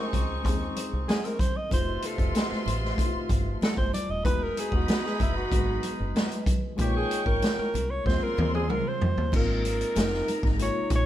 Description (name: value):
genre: lush 1970s-style soul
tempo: 95 BPM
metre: 4/4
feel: straight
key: Ab major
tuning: A4 = 441 Hz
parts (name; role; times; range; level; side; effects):
- breathy alto saxophone; melody; 0.0-11.1 s; E4 to Eb5; -31 LUFS; right 1 dB; none
- warm studio string section; second line; 0.0-11.1 s; Db4 to Db6; -39 LUFS; left 3 dB; none
- reed electric piano; accompaniment; 0.0-11.1 s; C3 to Ab4; -36 LUFS; left 4 dB; fast tremolo
- warm horn section; stabs; 0.0-9.0 s; B2 to G5; -35 LUFS; right 1 dB; none
- deep dub fingered electric bass; bass; 0.1-11.0 s; Eb1 to F2; -30 LUFS; equal; none
- vintage drum kit; drums; 0.1-11.1 s; crash cymbal, hi-hat, kick drum, snare drum, toms; -27 LUFS; equal; none
- congas; percussion; 0.1-11.1 s; none; -36 LUFS; equal; none
- vibraphone with medium hard mallets; texture; 3.3-11.1 s; A3 to D#5; -40 LUFS; right 2 dB; none
room: light reverb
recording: band playing live in one room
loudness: -24 LUFS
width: side -12 dB against mid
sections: 0.0-9.3 A section; 9.3-11.1 B section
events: alto saxophone solo 0.0-9.3; drum fill 8.1-9.3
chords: 0.0 Dbmaj9; 1.7 F7#11; 4.3 Emaj9; 6.8 Bbm11; 8.1 Eb13; 9.3 Ab69